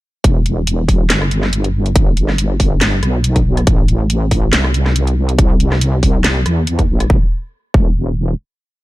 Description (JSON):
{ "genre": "deep dubstep", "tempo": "140 BPM", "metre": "4/4", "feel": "swing 54% on 16ths, half-time", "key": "E minor", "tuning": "A4 = 438 Hz", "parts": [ { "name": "wobble bass", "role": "bass", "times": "0.2-8.3 s", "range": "E1 to E2", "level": "-15 LUFS", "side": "equal", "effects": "chorus" }, { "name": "electronic kick drum", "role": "drums", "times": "0.2-7.9 s", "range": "none", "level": "-14 LUFS", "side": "equal", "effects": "overdrive" }, { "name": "garage drum kit", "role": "drums", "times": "0.2-7.1 s", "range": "handclaps, hi-hat, rim click, snare drum", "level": "-18 LUFS", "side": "equal", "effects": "none" } ], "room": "little or no reverb", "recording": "dark, warm production", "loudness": "-12 LUFS", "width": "side -18 dB against mid", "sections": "0.2-7.1 drop; 7.1-8.8 final note", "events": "drop 0.2-7.1", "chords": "none" }